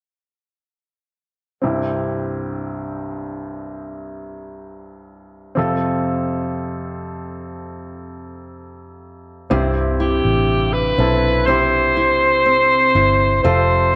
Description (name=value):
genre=pop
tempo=61 BPM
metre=4/4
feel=straight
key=C major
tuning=A4 = 441 Hz
part: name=clear baby grand piano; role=accompaniment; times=1.6-14.0 s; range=C2 to A4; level=-25 LUFS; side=equal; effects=none
part: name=nylon-string guitar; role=arpeggios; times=9.5-14.0 s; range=C3 to C5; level=-27 LUFS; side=equal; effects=none
part: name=vintage muted fingered electric bass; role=bass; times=9.5-14.0 s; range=F1 to C2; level=-23 LUFS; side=equal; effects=none
part: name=bright alto saxophone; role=melody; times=10.0-14.0 s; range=G4 to C5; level=-18 LUFS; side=equal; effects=none
room=wet spring reverb, RT60 1.4 s, studio reverb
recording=none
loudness=-18 LUFS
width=mono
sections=1.6-9.5 A section; 9.5-14.0 B section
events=none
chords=1.6 C; 5.6 F; 9.5 C; 13.4 F